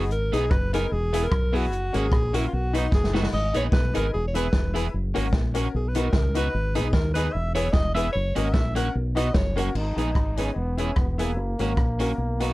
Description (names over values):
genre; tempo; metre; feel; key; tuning
ska; 149 BPM; 4/4; swing 56% on 8ths; G# minor; A4 = 440 Hz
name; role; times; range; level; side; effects
bright alto saxophone; melody; 0.0-9.6 s; D#4 to F#5; -28 LUFS; equal; none
electric guitar at the edge of break-up; accompaniment; 0.0-12.5 s; A#3 to G#4; -30 LUFS; right 5 dB; tube saturation
honky-tonk upright piano; stabs; 0.0-12.5 s; B3 to B4; -31 LUFS; left 4 dB; tube saturation
fingered electric bass; bass; 0.0-12.5 s; E1 to D#2; -26 LUFS; equal; none
vintage drum kit; drums; 0.1-12.5 s; crash cymbal, hi-hat, kick drum, rim click, snare drum, splash cymbal; -24 LUFS; equal; none
bright trombone; melody; 9.6-12.5 s; A#3 to F#4; -31 LUFS; equal; none
room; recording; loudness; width
little or no reverb; dark, warm production, lossy compression artefacts; -22 LUFS; side -18 dB against mid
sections
0.0-9.8 A section; 9.8-12.5 B section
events
alto saxophone solo 0.0-9.8; drum fill 2.9-3.3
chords
0.1 G#m; 0.9 E; 1.7 F#; 2.5 B; 3.3 G#m; 4.1 E; 4.9 F#; 5.7 B; 6.5 G#m; 7.3 E; 8.1 F#; 8.9 B; 9.3 F#; 9.8 G#m; 10.6 E; 11.4 F#